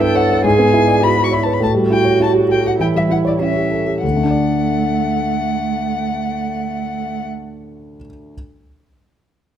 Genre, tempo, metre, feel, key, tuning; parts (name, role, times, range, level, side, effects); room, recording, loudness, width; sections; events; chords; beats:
quick classical-period movement for piano trio; 95-105 BPM; 4/4; straight; D major; A4 = 443 Hz
muted violin; melody; 0.0-7.2 s; D5 to C#6; -21 LUFS; left 5 dB
muted cello; second line; 0.0-7.2 s; A3 to A4; -20 LUFS; right 6 dB
warm concert grand piano; accompaniment; 0.0-8.3 s; D2 to E5; -18 LUFS; equal
moderate recital hall reverb, RT60 1.3 s; close, detailed microphones; -14 LUFS; side -10 dB against mid
0.0-4.0 A section; 4.0-6.5 B section
slowing down 0.0-4.0
0.4 E7/G#; 1.6 A7; 4.0 D
0.45 1.02 | 1.61 2.20 2.80 3.41 | 4.03 4.64 5.25 5.87